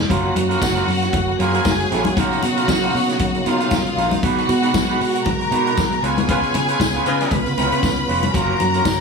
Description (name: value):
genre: disco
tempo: 116 BPM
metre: 4/4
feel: swing 56% on 16ths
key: unclear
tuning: A4 = 441 Hz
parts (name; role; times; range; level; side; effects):
- electric guitar through a small old amp; accompaniment; 0.0-8.9 s; Db4 to Cb5; -24 LUFS; right 6 dB; none
- tonewheel organ; sustained chords; 0.0-9.0 s; Cb3 to Gb4; -24 LUFS; right 1 dB; overdrive, chorus vibrato, slow rotary speaker
- fingered electric bass; bass; 0.0-9.0 s; F1 to Db3; -23 LUFS; equal; none
- congas; percussion; 0.0-9.0 s; none; -27 LUFS; left 7 dB; none
- clear studio string section; second line; 0.1-9.0 s; E#4 to Cb6; -22 LUFS; left 3 dB; none
- vintage drum kit; drums; 0.1-9.0 s; hi-hat, kick drum, snare drum; -24 LUFS; equal; none
- tambourine; percussion; 0.6-9.0 s; none; -34 LUFS; left 5 dB; none
- mellow horn section; stabs; 6.3-7.4 s; Ab3 to Cb5; -24 LUFS; left 3 dB; none
room: light reverb, small room ambience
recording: none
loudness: -16 LUFS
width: side -4 dB against mid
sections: 0.1-9.0 A section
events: band accent 6.3-8.3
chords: 0.1 Gbmaj7; 2.2 Bmaj9#11; 4.2 Abm7/Cb; 6.0 Db7; 8.3 Gbmaj7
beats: | 0.10 0.62 1.13 1.65 | 2.16 2.68 3.19 3.71 | 4.22 4.74 5.25 5.77 | 6.28 6.80 7.31 7.83 | 8.34 8.86